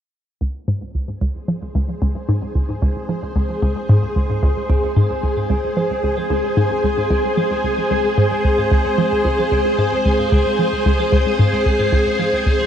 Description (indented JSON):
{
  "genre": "ambient, sequencer-driven space music",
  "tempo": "112 BPM",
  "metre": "4/4",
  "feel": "straight",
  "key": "Db major",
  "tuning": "A4 = 440 Hz",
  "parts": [
    { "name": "hollow square pluck", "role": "riff", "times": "0.4-12.6 s", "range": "Db2 to F3", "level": "-18 LUFS", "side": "equal", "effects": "chorus, phaser, cassette tape, tape echo" },
    { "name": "string machine, full ensemble", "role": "sustained chords", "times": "0.9-12.7 s", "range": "Ab4 to C5", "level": "-19 LUFS", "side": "equal", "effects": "ensemble chorus" },
    { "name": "twelve-string electric guitar", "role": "arpeggios", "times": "4.7-12.7 s", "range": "C4 to Ab4", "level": "-35 LUFS", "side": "equal", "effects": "none" }
  ],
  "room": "wet huge ambient reverb, RT60 8.4 s",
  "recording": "dreamy mix soaked in reverb",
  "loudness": "-16 LUFS",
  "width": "side -9 dB against mid",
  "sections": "0.4-4.7 A section; 4.7-12.7 B section",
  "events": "fade-in on string machine 0.4-4.7; filter sweep on synth arpeggio sound 0.4-4.7",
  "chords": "0.4 Dbmaj7(no3); 4.7 Dbmaj7"
}